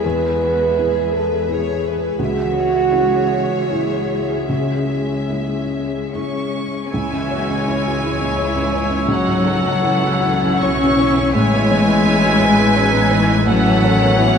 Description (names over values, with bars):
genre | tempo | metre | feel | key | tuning
cinematic, emotional film score for orchestra | 69-85 BPM | 3/4 | rubato | C# minor from 6.9 s | A4 = 440 Hz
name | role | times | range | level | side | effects
rich studio violin section | melody | 0.0-14.4 s | E5 to C#6 | -24 LUFS | left 2 dB | none
rich chamber violin section | second line | 0.0-14.4 s | C#4 to E5 | -26 LUFS | equal | none
felt-muted upright piano | accompaniment | 0.0-14.4 s | C#2 to C#5 | -24 LUFS | right 1 dB | none
rich studio viola section | accompaniment | 0.0-14.4 s | D#3 to G#4 | -26 LUFS | left 2 dB | none
warm French horn section | sustained chords | 0.0-14.4 s | F#3 to B4 | -20 LUFS | right 1 dB | none
concert harp | arpeggios | 0.0-14.4 s | A2 to G#5 | -26 LUFS | left 3 dB | none
rich studio cello section | bass | 0.0-14.4 s | C#2 to C#4 | -23 LUFS | left 2 dB | none
clear oboe | second line | 6.9-14.4 s | B4 to C#5 | -26 LUFS | right 3 dB | none
mellow hollow silver concert flute | second line | 6.9-14.4 s | E6 | -28 LUFS | right 5 dB | none
rich studio double bass section | bass | 6.9-14.4 s | A1 to C#2 | -24 LUFS | equal | none
room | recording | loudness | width
wet cathedral reverb, RT60 5.4 s | in a vast, echoing space, nothing above 10.4 kHz | -15 LUFS | side -7 dB against mid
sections
0.0-6.9 A section; 6.9-14.4 B section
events
none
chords
0.0 E; 2.2 C#m; 11.3 Aadd9